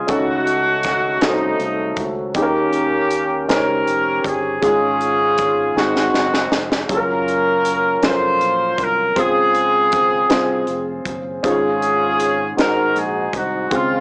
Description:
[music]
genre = slow gospel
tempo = 53 BPM (dotted quarters)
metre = 6/8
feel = straight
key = Db major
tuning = A4 = 440 Hz
[part]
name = warm horn section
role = melody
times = 0.0-14.0 s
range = Gb3 to C5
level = -17 LUFS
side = equal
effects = cassette tape
[part]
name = warm upright piano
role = accompaniment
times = 0.0-14.0 s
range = Ab2 to Eb5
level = -21 LUFS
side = equal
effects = cassette tape
[part]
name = fingered electric bass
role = bass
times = 0.0-14.0 s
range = F1 to Eb2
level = -33 LUFS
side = equal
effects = none
[part]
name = crisp fusion drum kit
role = drums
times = 0.1-13.9 s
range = hi-hat, kick drum, snare drum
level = -22 LUFS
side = equal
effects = cassette tape
[sound]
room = light reverb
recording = home recording on cassette, small speaker sound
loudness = -15 LUFS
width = side -38 dB against mid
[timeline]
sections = 0.0-14.0 A section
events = drum fill 5.8-6.9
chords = 0.1 Gbm6/Db; 2.4 Eb7; 4.6 Db/Ab; 5.8 Ab7; 6.9 Gbmaj7; 9.2 Dbmaj7; 11.4 Db/Ab; 12.6 Ab7

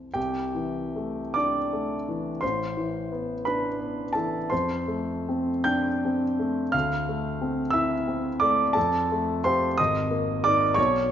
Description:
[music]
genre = classical, impressionist solo piano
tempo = 49-62 BPM (dotted quarters)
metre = 6/8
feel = rubato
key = unclear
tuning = A4 = 439 Hz
[part]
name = clear grand piano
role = solo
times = 0.0-11.1 s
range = Ab1 to G6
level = -23 LUFS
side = equal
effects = none
[sound]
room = wet scoring stage reverb, RT60 1.7 s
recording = nothing above 7.5 kHz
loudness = -23 LUFS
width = side -9 dB against mid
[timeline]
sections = 0.2-11.1 A section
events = none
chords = 0.2 C69; 2.4 Amadd9; 4.5 F69; 6.7 Dm9; 8.8 Fadd9; 9.8 Absus2

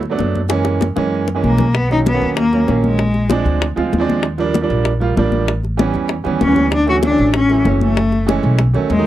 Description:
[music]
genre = Afro-Cuban jazz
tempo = 193 BPM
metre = 4/4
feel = straight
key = unclear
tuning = A4 = 440 Hz
[part]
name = upright bass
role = bass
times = 0.0-9.1 s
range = F#1 to F#2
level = -19 LUFS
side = equal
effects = none
[part]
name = bongos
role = percussion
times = 0.0-9.1 s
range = none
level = -23 LUFS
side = left 7 dB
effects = none
[part]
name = clear grand piano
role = accompaniment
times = 0.1-9.1 s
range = D#3 to E#4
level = -18 LUFS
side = right 5 dB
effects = none
[part]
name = congas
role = percussion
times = 0.1-9.1 s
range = none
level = -22 LUFS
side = left 3 dB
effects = none
[part]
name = rich cello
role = melody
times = 1.4-3.4, 6.4-9.1 s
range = G#3 to F#4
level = -16 LUFS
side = left 2 dB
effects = none
[sound]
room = light reverb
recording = dry, close 1970s-style studio recording, lossy compression artefacts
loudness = -13 LUFS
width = side -13 dB against mid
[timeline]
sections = 0.0-1.8 A section; 1.8-9.1 B section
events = drum fill 0.5-1.8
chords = 0.0 Gmaj9 (rootless); 0.5 F#7; 1.8 Bmaj7; 3.0 A#7; 4.2 D#maj7; 5.5 A7; 6.7 Dmaj7; 8.0 F#m7

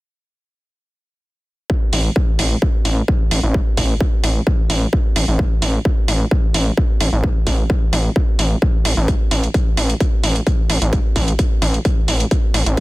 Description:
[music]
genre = driving peak-time techno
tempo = 130 BPM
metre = 4/4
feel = straight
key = unclear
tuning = A4 = 441 Hz
[part]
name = electronic kick drum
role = drums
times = 1.7-12.8 s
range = none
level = -17 LUFS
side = equal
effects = distortion
[part]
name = gritty driven synth bass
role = bass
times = 1.9-12.8 s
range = A1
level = -17 LUFS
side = equal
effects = sidechain pumping
[part]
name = electronic hi-hat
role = drums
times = 1.9-12.8 s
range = none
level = -23 LUFS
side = right 1 dB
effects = none
[sound]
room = little or no reverb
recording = dense, heavily limited modern master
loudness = -15 LUFS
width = side -19 dB against mid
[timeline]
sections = 1.7-12.8 A section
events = none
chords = none

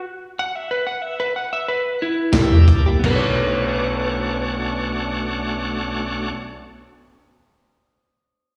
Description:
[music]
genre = straight-eighth soul blues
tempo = 82-98 BPM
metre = 4/4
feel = straight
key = B minor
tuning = A4 = 440 Hz
[part]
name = lightly driven lead guitar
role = melody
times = 0.0-6.3 s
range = E4 to F#5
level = -26 LUFS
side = equal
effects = slapback echo, digital delay
[part]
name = bright tonewheel organ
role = accompaniment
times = 2.0-6.3 s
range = A3 to F#5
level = -28 LUFS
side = equal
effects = slow rotary speaker, overdrive, slapback echo
[part]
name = direct-recorded clean electric guitar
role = stabs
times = 2.3-6.7 s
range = C3 to C#5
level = -29 LUFS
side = equal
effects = digital delay
[part]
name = mellow tine electric piano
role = bass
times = 2.3-6.3 s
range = B1 to E2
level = -23 LUFS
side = equal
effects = none
[part]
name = crunchy breakbeat drum kit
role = drums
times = 2.3-3.2 s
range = crash cymbal, hi-hat, kick drum, snare drum, tambourine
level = -24 LUFS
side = equal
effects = none
[sound]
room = light reverb, studio ambience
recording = live gig heard through the venue's PA, recital hall reverb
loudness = -21 LUFS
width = mono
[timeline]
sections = 0.0-3.0 A section; 3.0-6.0 B section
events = slowing down 0.0-3.0; stop 0.0-2.3; tonewheel organ fill 1.6-3.0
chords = 0.0 B5; 2.3 C7; 3.0 Bm9

